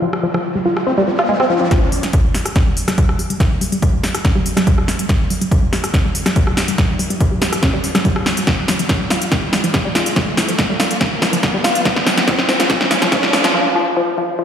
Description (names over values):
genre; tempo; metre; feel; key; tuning
driving peak-time techno; 142 BPM; 4/4; straight; unclear; A4 = 440 Hz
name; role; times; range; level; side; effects
tight sequenced synth; riff; 0.0-14.4 s; F3 to G4; -19 LUFS; left 1 dB; chorus, sidechain pumping, digital delay
riser and swell; sound effects; 0.0-14.4 s; none; -25 LUFS; equal; none
techno drum kit; drums; 0.1-13.5 s; hi-hat, rim click, snare drum; -18 LUFS; equal; low-pass filter on snare, low-pass filter on hats
electronic kick drum; drums; 1.7-13.2 s; none; -17 LUFS; equal; none
room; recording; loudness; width
wet lush hall reverb, RT60 1.8 s, digital ambience; played on a big sound system in a bare room, stone room reverb, high-pass filter; -14 LUFS; side -8 dB against mid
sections
0.0-1.7 A section; 1.7-14.4 B section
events
riser 0.0-1.7, 1.7-13.5; filter sweep on synth arpeggio sound 0.0-1.7, 1.7-14.4; build-up 1.7-14.4; drum fill 1.7-13.5; filter sweep 1.7-14.4; break 13.5-14.4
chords
none